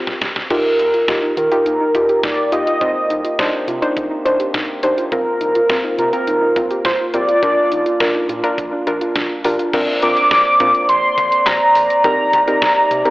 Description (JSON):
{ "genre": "synth-pop", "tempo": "104 BPM", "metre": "4/4", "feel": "straight", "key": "unclear", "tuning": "A4 = 439 Hz", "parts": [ { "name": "soft round pluck", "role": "accompaniment", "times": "0.0-13.1 s", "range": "C4 to C5", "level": "-20 LUFS", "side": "equal", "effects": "chorus" }, { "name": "round analog bass", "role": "bass", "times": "0.0-13.0 s", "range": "F1 to Eb3", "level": "-35 LUFS", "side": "equal", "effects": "none" }, { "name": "detuned 8-bit digital drum machine", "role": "drums", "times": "0.1-13.1 s", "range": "crash cymbal, handclaps, hi-hat, kick drum, snare drum", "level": "-22 LUFS", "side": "equal", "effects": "none" }, { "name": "warm velvety synth lead", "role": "melody", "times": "0.5-13.1 s", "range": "Bb4 to D6", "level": "-15 LUFS", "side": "equal", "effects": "chorus" }, { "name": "dark French horn section", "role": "sustained chords", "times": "0.5-13.1 s", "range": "C3 to D5", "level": "-23 LUFS", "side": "right 1 dB", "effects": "none" }, { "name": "soft round pluck", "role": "arpeggios", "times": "0.5-9.7 s", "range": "D4 to G4", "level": "-26 LUFS", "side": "right 1 dB", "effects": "chorus, digital delay" } ], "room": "wet concert hall reverb, RT60 2.1 s", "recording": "blown-out, overdriven recording, overdrive, telephone sound", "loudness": "-14 LUFS", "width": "side -19 dB against mid", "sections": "0.5-9.7 A section; 9.7-13.1 B section", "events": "drum fill 0.0-0.5", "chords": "0.0 Fsus2; 0.5 Ebadd9; 2.8 Cmadd9; 5.1 Fsus4/C; 7.4 Bb; 9.7 Bbadd9; 12.0 Cm7", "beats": "| 0.50 1.08 1.66 2.23 | 2.81 3.39 3.97 4.54 | 5.12 5.70 6.27 6.85 | 7.43 8.00 8.58 9.16 | 9.73 10.31 10.89 11.47 | 12.04 12.62" }